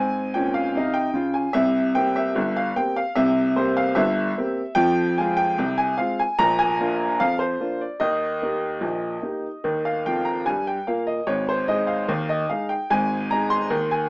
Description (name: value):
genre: ragtime piano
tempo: 74 BPM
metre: 2/4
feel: straight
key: Ab major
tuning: A4 = 439 Hz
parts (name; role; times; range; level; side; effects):
- clear upright piano; solo; 0.0-14.1 s; G1 to C6; -20 LUFS; equal; none
room: moderate studio reverb, RT60 0.5 s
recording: rough home demo mix, small speaker sound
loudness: -20 LUFS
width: side -26 dB against mid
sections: 0.0-14.1 A section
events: upright piano fill 10.1-11.3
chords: 0.0 Ab; 1.6 C7; 4.8 Fm; 6.4 Bb; 8.0 Eb; 11.3 Ab5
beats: 0.74 | 1.55 2.36 | 3.16 3.97 | 4.78 5.58 | 6.39 7.20 | 8.02 8.83 | 9.65 10.46 | 11.28 12.09 | 12.90 13.71